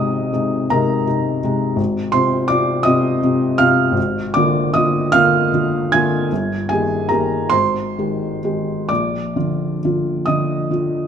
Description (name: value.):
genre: classical, romantic nocturne for solo piano.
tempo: 42-57 BPM (dotted quarters).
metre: 6/8.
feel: rubato.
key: unclear.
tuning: A4 = 440 Hz.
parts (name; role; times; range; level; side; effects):
felt-muted upright piano; solo; 0.0-11.1 s; G1 to Ab6; -15 LUFS; equal; none.
room: moderate recital hall reverb, RT60 1.7 s.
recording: close, detailed microphones.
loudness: -15 LUFS.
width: side -8 dB against mid.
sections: 0.0-11.1 A section.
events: none.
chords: 0.0 Ab; 1.8 Fm7/Ab; 4.0 Bb7/Ab; 6.3 Eb/G; 7.5 Abmaj7; 8.9 Bb.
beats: 0.70 | 1.79 2.85 | 3.97 5.13 | 6.30 7.53 | 8.89 10.28.